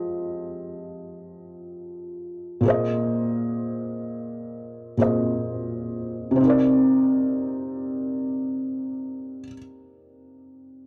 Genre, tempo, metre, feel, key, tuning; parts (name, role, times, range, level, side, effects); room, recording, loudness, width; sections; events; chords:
R&B; free time; C minor; A4 = 441 Hz
felt-muted upright piano; solo; 0.0-10.9 s; Bb2 to Eb5; -26 LUFS; equal
light reverb, small room ambience; dry, gritty hardware recording; -24 LUFS; mono
0.0-6.4 A section; 6.4-10.2 B section
0.0 Fm9; 2.7 Bb7sus4; 6.4 Cm9